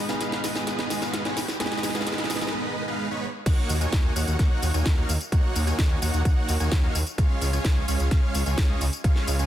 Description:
EDM, festival progressive house; 129 BPM; 4/4; straight; Eb minor; A4 = 436 Hz
warm grand piano; accompaniment; 0.0-2.5 s; Ab3 to Ab4; -34 LUFS; left 2 dB; sidechain pumping, tape echo
dense compressed supersaw; riff; 0.0-9.5 s; Ab3 to Ab5; -29 LUFS; right 1 dB; sidechain pumping, tape echo
riser; sound effects; 0.0-2.5 s; -37 LUFS; right 1 dB
house drum kit; drums; 0.1-9.5 s; crash cymbal, hi-hat, snare drum, tambourine; -30 LUFS; equal
detuned saw bass; bass; 3.5-9.4 s; Db2 to Eb2; -26 LUFS; equal; sidechain pumping
electronic kick drum; drums; 3.5-9.1 s; -22 LUFS; equal
light reverb; dense, heavily limited modern master; -22 LUFS; side -12 dB against mid
0.0-3.5 A section; 3.5-9.5 B section
build-up 0.0-3.5; drum fill 0.0-2.5; break 2.5-3.5; drop 3.5-9.5
0.0 Abm; 3.5 Ebm7; 7.2 Db

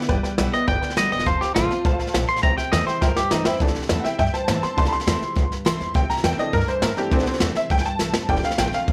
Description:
rockabilly; 205 BPM; 4/4; straight; C major; A4 = 440 Hz
honky-tonk upright piano; accompaniment; 0.0-8.9 s; E3 to C6; -27 LUFS; equal
picked steel-string acoustic guitar; accompaniment; 0.0-8.9 s; F2 to F4; -31 LUFS; equal
jazz brush drum kit; drums; 0.0-8.9 s; hi-hat, kick drum, snare drum; -26 LUFS; equal
upright bass; bass; 0.1-8.9 s; E1 to A2; -29 LUFS; equal
twangy electric guitar; melody; 0.5-3.6 s; Eb4 to C6; -25 LUFS; equal; tape echo
light reverb; -21 LUFS; mono
0.0-3.6 A section; 3.6-8.9 B section
drum fill 3.0-3.6, 8.0; honky-tonk piano solo 3.6-8.9
0.0 G6; 1.3 F6; 2.4 C6; 8.3 F6

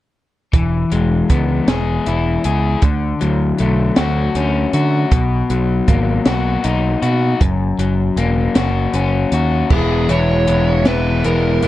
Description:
indie rock; 52 BPM (dotted quarters); 6/8; straight; E lydian; A4 = 441 Hz
crunchy overdriven guitar; riff; 0.5-11.7 s; F#2 to G#4; -18 LUFS; left 4 dB
growling picked electric bass; bass; 0.5-11.7 s; E1 to D3; -18 LUFS; right 1 dB; overdrive
compact cocktail drum kit; drums; 0.5-11.7 s; crash cymbal, hi-hat, kick drum, snare drum; -17 LUFS; right 1 dB; vintage 12-bit sampler grit
fuzz lead guitar; melody; 9.7-11.7 s; G#4 to C#5; -19 LUFS; right 4 dB; distortion, tape echo
light reverb; dark, warm production; -14 LUFS; side -14 dB against mid
0.5-9.7 A section; 9.7-11.7 B section
0.5 E; 2.8 Dmaj7; 5.1 Bmaj7; 7.4 F#; 9.7 E

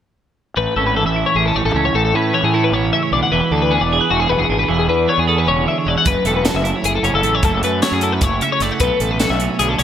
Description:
math rock and midwest emo; 306 BPM (eighths); 7/8; straight; A major; A4 = 440 Hz
twelve-string electric guitar; accompaniment; 0.6-9.8 s; F#2 to A4; -20 LUFS; right 7 dB; lush chorus
twelve-string electric guitar; arpeggios; 0.6-9.8 s; F#4 to F#5; -18 LUFS; left 6 dB; analog chorus
fuzz fingered electric bass; bass; 0.6-9.8 s; E1 to A2; -21 LUFS; equal; overdrive
crisp fusion drum kit; drums; 6.1-9.8 s; hi-hat, kick drum, snare drum; -21 LUFS; right 1 dB; gated reverb
moderate lush hall reverb, RT60 1.6 s, studio reverb; bright 1980s-style digital production; -14 LUFS; side -9 dB against mid
0.6-9.8 A section
0.6 Amaj7; 3.3 E7; 8.8 Bm11

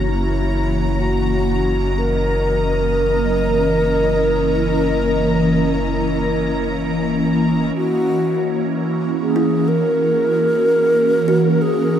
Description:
ambient; free time; A4 = 440 Hz
ethereal airy pad; sustained chords; 0.0-12.0 s; E3 to D#5; -19 LUFS; right 1 dB; ensemble chorus, built-in reverb, phaser
kalimba; arpeggios; 0.0-12.0 s; F#3 to E5; -28 LUFS; left 1 dB; analog delay
warm sub bass; bass; 0.0-7.7 s; F#1; -23 LUFS; equal
clear studio violin section; texture; 0.0-12.0 s; A#5; -30 LUFS; left 1 dB
mellow hollow alto flute; melody; 0.1-12.0 s; E4 to A#4; -19 LUFS; equal; analog delay
wet huge ambient reverb, RT60 8.2 s; dreamy mix soaked in reverb; -15 LUFS; side -9 dB against mid
0.0-7.8 A section; 7.8-12.0 B section
0.0 F#7

